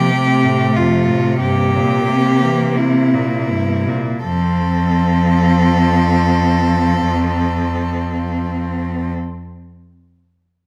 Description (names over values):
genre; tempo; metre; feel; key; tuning
classical, lyrical piece for cello ensemble; 39-48 BPM; 4/4; rubato; F major; A4 = 441 Hz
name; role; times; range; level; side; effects
warm cello; melody; 0.0-9.1 s; E4 to A4; -23 LUFS; equal; none
rich cello; second line; 0.0-9.1 s; A3 to C4; -23 LUFS; equal; none
rich cello; accompaniment; 0.0-9.1 s; F2 to F3; -21 LUFS; equal; none
warm cello; bass; 0.0-9.1 s; F2 to C3; -22 LUFS; equal; none
room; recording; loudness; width
moderate recital hall reverb, RT60 1.3 s; close, detailed microphones; -16 LUFS; mono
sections
0.0-4.2 A section; 4.2-9.9 B section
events
slowing down 0.0-4.2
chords
0.0 F; 1.4 C7/G; 4.2 F